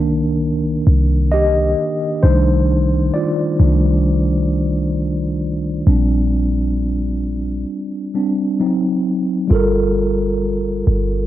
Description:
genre	contemporary R&B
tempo	66 BPM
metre	4/4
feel	straight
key	G minor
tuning	A4 = 440 Hz
part	mellow tine electric piano	accompaniment	0.0-11.3 s	Eb3 to Eb5	-17 LUFS	equal	medium stereo tremolo, cassette tape
part	clean 808-style bass	bass	0.0-11.3 s	G1 to C2	-17 LUFS	equal	none
room	digital ambience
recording	home recording on cassette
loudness	-15 LUFS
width	side -13 dB against mid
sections	0.0-9.5 A section; 9.5-11.3 B section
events	tine electric piano solo 0.0-9.5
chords	0.0 Cm7; 2.2 F13/C; 5.9 Bb69; 8.6 Cdim/Gb; 9.5 Gm9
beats	0.42 1.32 | 2.23 3.14 4.05 4.96 | 5.87 6.78 7.69 8.60 | 9.51 10.42

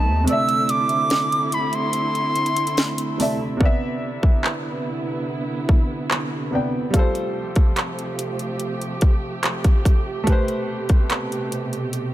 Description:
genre	contemporary R&B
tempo	72 BPM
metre	4/4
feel	straight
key	C major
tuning	A4 = 439 Hz
part	silver concert flute	melody	0.0-3.2 s	A5 to E6	-21 LUFS	right 1 dB	digital delay
part	warm grand piano	accompaniment	0.0-12.1 s	B2 to G5	-27 LUFS	equal	none
part	muted studio string section	sustained chords	0.0-12.1 s	B2 to G4	-27 LUFS	right 2 dB	none
part	trap drum kit	drums	0.3-12.1 s	handclaps, hi-hat, kick drum, snare drum	-19 LUFS	equal	none
room	small room ambience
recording	none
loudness	-19 LUFS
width	side -14 dB against mid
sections	0.0-3.6 A section; 3.6-12.1 B section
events	kick muted 0.3-3.6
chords	0.3 C69; 3.6 Cmaj9; 6.9 G9sus4; 10.3 Am9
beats	| 0.27 1.10 1.94 2.77 | 3.60 4.44 5.27 6.10 | 6.94 7.77 8.60 9.44 | 10.27 11.10 11.94

